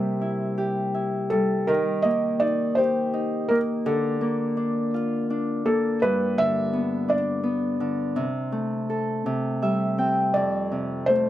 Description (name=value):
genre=children's music, lullaby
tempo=55 BPM (dotted quarters)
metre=6/8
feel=straight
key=F major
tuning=A4 = 440 Hz
part: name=felt-muted upright piano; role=melody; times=0.0-11.3 s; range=A4 to E5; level=-24 LUFS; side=equal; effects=none
part: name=Celtic harp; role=accompaniment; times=0.0-11.3 s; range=F2 to G5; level=-24 LUFS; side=left 1 dB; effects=none
room=moderate small room reverb, RT60 0.5 s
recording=none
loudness=-22 LUFS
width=side -13 dB against mid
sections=0.0-10.3 A section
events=harp fill 9.3-10.3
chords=0.0 C; 1.7 Eb; 3.9 Bb/D; 6.0 G; 8.2 Amadd11/C; 9.3 C5; 10.3 F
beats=0.58 | 1.68 2.77 | 3.86 4.94 | 6.02 7.09 | 8.17 9.26 | 10.35